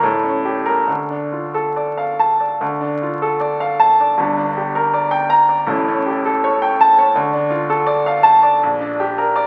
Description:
classical, romantic character piece for solo piano; 68-84 BPM; 2/4; rubato; D minor; A4 = 439 Hz
clear baby grand piano; solo; 0.0-9.5 s; G1 to Bb5; -17 LUFS; equal
wet large studio reverb, RT60 1.1 s; very old 78 rpm record, vinyl crackle; -17 LUFS; mono
0.0-2.6 A section; 2.6-9.5 A section
0.0 A7b9; 0.9 Dm; 4.2 Gm; 5.7 A7; 7.1 Dm; 8.6 Gm/Bb
0.04 | 0.88 1.76 | 2.61 3.40 | 4.17 4.93 | 5.68 6.43 | 7.14 7.86 | 8.60 9.34

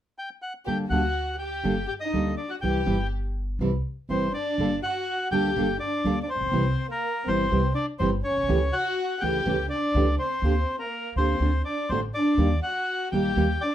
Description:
tango; 123 BPM; 4/4; rubato; G harmonic minor; A4 = 440 Hz
bandoneon; melody; 0.2-13.7 s; Bb4 to G5; -29 LUFS; left 1 dB
dark studio violin section; second line; 0.7-13.7 s; Bb3 to G4; -30 LUFS; left 1 dB
nylon-string guitar; accompaniment; 0.7-13.5 s; C3 to A4; -26 LUFS; right 1 dB
upright bass; bass; 0.7-13.6 s; G1 to Eb2; -28 LUFS; equal
moderate studio ambience, RT60 0.4 s; -23 LUFS; side -11 dB against mid
0.7-4.6 A section; 4.6-13.7 B section
0.0 N.C.; 0.7 Gmadd9; 2.6 C; 4.6 Gmadd9; 6.5 C; 8.5 A7/C#; 10.4 Gm/D; 11.4 D; 12.4 Eb
0.18 | 0.67 1.16 1.65 2.14 | 2.63 3.12 3.60 4.09 | 4.58 5.07 5.56 6.05 | 6.54 7.03 7.51 8.00 | 8.49 8.97 9.46 9.95 | 10.44 10.92 11.41 11.90 | 12.39 12.88 13.37

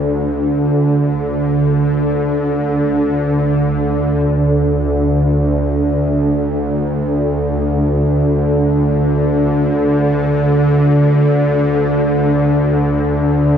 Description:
ambient; free time; A4 = 435 Hz
bowed-like drone; solo; 0.0-13.6 s; D2 to D3; -13 LUFS; equal; built-in reverb, ping-pong delay
wet huge ambient reverb, RT60 7.9 s; dark, warm production; -13 LUFS; side -8 dB against mid
0.0-4.3 A section; 4.3-13.6 B section
free time

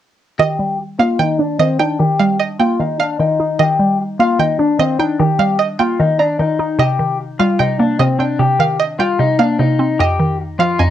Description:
hip hop; 150 BPM; 4/4; half-time; Eb major; A4 = 442 Hz
electric guitar at the edge of break-up; melody; 0.4-10.9 s; C4 to G4; -17 LUFS; left 5 dB; wide subtle chorus, low-pass filter, cassette tape, analog delay
string-like resonator pluck; second line; 0.4-10.9 s; Eb5 to Bb5; -19 LUFS; right 7 dB; chorus, cassette tape, analog delay
mallet-like synth pluck; accompaniment; 0.4-10.9 s; F2 to D5; -16 LUFS; right 1 dB; chorus, phaser, low-pass filter, cassette tape
moderate small room reverb, RT60 0.5 s; home recording on cassette; -13 LUFS; side -11 dB against mid
0.4-10.9 A section
filter sweep 0.4-10.9
0.4 Ebmaj7; 6.8 Cm7; 10.0 F7(no3)
| 0.39 0.79 1.19 1.59 | 1.99 2.39 2.79 3.19 | 3.59 3.99 4.39 4.79 | 5.19 5.59 5.99 6.39 | 6.79 7.19 7.59 7.99 | 8.39 8.79 9.19 9.59 | 9.99 10.39 10.79

